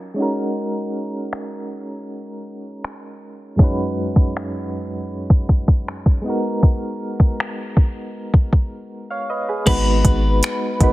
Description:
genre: contemporary R&B.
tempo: 79 BPM.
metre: 4/4.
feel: straight.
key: unclear.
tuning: A4 = 442 Hz.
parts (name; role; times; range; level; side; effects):
soft electric-piano-like synth keys; accompaniment; 0.0-10.9 s; F#2 to F5; -24 LUFS; equal; chorus, tremolo.
smooth R&B drum kit; drums; 1.3-10.9 s; crash cymbal, finger snaps, hi-hat, kick drum; -15 LUFS; equal; overdrive, soft clipping on snare.
twelve-string electric guitar; melody; 9.7-10.9 s; Cb5; -23 LUFS; left 1 dB; spring reverb.
long sustained 808-style bass; bass; 9.7-10.9 s; Ab1; -18 LUFS; equal; none.
room: digital ambience.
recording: dense, heavily limited modern master, low-pass filter.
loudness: -17 LUFS.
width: side -17 dB against mid.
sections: 0.0-9.7 A section; 9.7-10.9 B section.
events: filter sweep 0.0-9.7; break 8.9-9.7.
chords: 0.2 Gb6; 3.6 B6/F#; 6.2 Abm9; 9.7 Abm7.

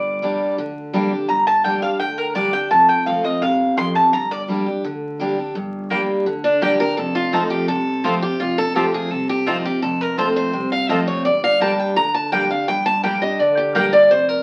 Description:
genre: bluegrass.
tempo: 169 BPM.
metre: 4/4.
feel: straight.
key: G minor.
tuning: A4 = 440 Hz.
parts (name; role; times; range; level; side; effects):
picked steel-string acoustic guitar; accompaniment; 0.0-14.4 s; F2 to G4; -24 LUFS; equal; none.
mandolin; stabs; 0.0-13.8 s; Bb3 to C6; -21 LUFS; equal; none.
upright bass; bass; 0.0-14.4 s; F1 to D2; -42 LUFS; equal; none.
picked steel-string acoustic guitar; melody; 6.4-14.4 s; D4 to Bb5; -20 LUFS; equal; none.
room: wet studio reverb, RT60 0.5 s.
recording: very old 78 rpm record, vinyl crackle.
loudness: -19 LUFS.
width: mono.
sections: 0.0-5.6 A section; 5.6-14.4 B section.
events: mandolin solo 0.0-5.6.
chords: 0.0 Gm; 2.7 F; 4.1 Gm; 7.0 F; 11.3 Gm.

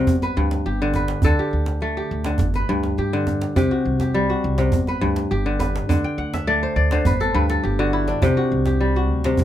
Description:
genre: west african traditional, West African string and xylophone music.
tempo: 103 BPM.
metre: 4/4.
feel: straight.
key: unclear.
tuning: A4 = 442 Hz.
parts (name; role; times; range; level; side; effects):
kora; arpeggios; 0.0-9.4 s; G2 to G5; -21 LUFS; left 1 dB; none.
upright bass; bass; 0.1-9.4 s; G1 to G2; -23 LUFS; equal; none.
djembe; percussion; 0.1-9.4 s; none; -23 LUFS; right 2 dB; none.
room: little or no reverb.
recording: close, detailed microphones.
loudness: -18 LUFS.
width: side -12 dB against mid.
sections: 0.0-9.4 A section.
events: kora fill 6.0-8.2.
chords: 0.1 G; 1.2 D5; 2.4 G; 3.6 C5; 4.7 G; 5.9 D5; 7.1 G5; 8.2 C5.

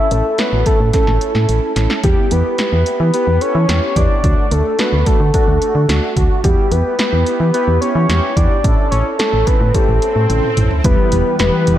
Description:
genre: synth-pop.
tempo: 109 BPM.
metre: 4/4.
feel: straight.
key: E dorian.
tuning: A4 = 440 Hz.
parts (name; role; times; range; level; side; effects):
soft octave-layered synth lead; melody; 0.0-11.8 s; G4 to E5; -18 LUFS; left 1 dB; chorus, analog delay.
mellow synth brass; accompaniment; 0.0-11.8 s; G3 to A4; -22 LUFS; right 2 dB; chorus.
solid FM bass; bass; 0.1-11.8 s; E1 to E3; -16 LUFS; equal; none.
punchy analog drum machine; drums; 0.1-11.8 s; hi-hat, kick drum, snare drum, toms; -17 LUFS; equal; none.
swell; sound effects; 9.4-10.8 s; none; -27 LUFS; right 1 dB; none.
brassy analog pad; sustained chords; 10.8-11.8 s; E3 to B4; -19 LUFS; left 1 dB; chorus.
room: moderate lush hall reverb, RT60 2.0 s, digital ambience.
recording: dreamy mix soaked in reverb.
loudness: -12 LUFS.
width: side -12 dB against mid.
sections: 0.0-10.8 A section.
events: drum fill 0.9-2.0, 10.3-10.8; swell 9.4-10.8.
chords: 0.0 A; 2.0 Em; 4.2 D; 6.4 Em; 8.6 A; 10.8 Em.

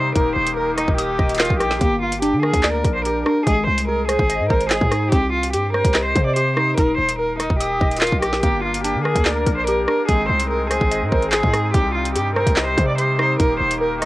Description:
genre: hip hop, drill.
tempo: 145 BPM.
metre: 4/4.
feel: half-time.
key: G phrygian.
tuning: A4 = 445 Hz.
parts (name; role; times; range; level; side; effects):
rich cello; melody; 0.0-14.1 s; Eb4 to D5; -21 LUFS; equal; low-pass filter.
glassy digital keys; accompaniment; 0.0-14.1 s; Ab3 to Eb6; -23 LUFS; equal; chorus, low-pass filter, cassette tape.
pipe organ, soft reed; sustained chords; 0.0-1.8, 8.4-14.1 s; C3 to Bb4; -29 LUFS; left 1 dB; cassette tape.
hard-hitting 808-style bass; bass; 0.0-14.1 s; Eb1 to D3; -24 LUFS; equal; none.
drill drum kit; drums; 0.2-14.1 s; handclaps, hi-hat, kick drum, rim click, snare drum; -20 LUFS; equal; cassette tape.
room: light reverb.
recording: home recording on cassette.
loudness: -16 LUFS.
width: side -17 dB against mid.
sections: 0.0-1.8 A section; 1.8-14.1 A section.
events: none.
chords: 0.2 Eb; 1.8 Gm; 3.5 Ab; 5.1 Cm; 6.8 Eb; 8.4 Gm; 10.1 Ab; 11.7 Cm; 13.4 Eb.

